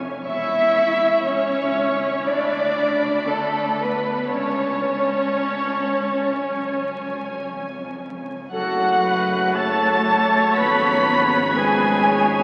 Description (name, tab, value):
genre	classical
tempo	59 BPM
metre	4/4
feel	rubato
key	F# minor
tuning	A4 = 440 Hz
part	rich chamber violin section	melody	0.0-12.4 s	G#5 to B6	-31 LUFS	equal	none
part	dark studio double bass section	bass	0.0-12.4 s	E1 to D2	-40 LUFS	equal	none
part	warm symphonic cello section	bass	0.0-12.4 s	C#2 to B3	-33 LUFS	equal	none
part	rich chamber violin section	second line	0.3-12.4 s	A4 to B5	-24 LUFS	equal	none
part	rich chamber viola section	accompaniment	0.3-12.4 s	A3 to C#5	-28 LUFS	equal	none
part	dark clarinet	second line	8.5-12.4 s	F#4 to B4	-32 LUFS	equal	none
part	silver concert flute	second line	8.5-12.4 s	F#5 to B5	-26 LUFS	equal	none
part	warm oboe	second line	8.5-12.4 s	F#4 to B4	-30 LUFS	equal	none
part	dark French horn section	sustained chords	8.5-12.4 s	F#3 to B3	-31 LUFS	equal	none
part	dark trombone section	sustained chords	8.5-12.4 s	E#3 to C#4	-30 LUFS	equal	none
part	mellow tuba	bass	8.5-12.4 s	F#1 to G#1	-35 LUFS	equal	none
room	wet cathedral reverb, RT60 7.3 s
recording	very old 78 rpm record, vinyl crackle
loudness	-20 LUFS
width	mono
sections	0.0-8.5 A section; 8.5-12.4 B section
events	none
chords	0.3 C#m/E; 2.3 Bm/D; 4.3 A/C#; 6.5 C#; 8.5 F#m; 10.6 C#7/G#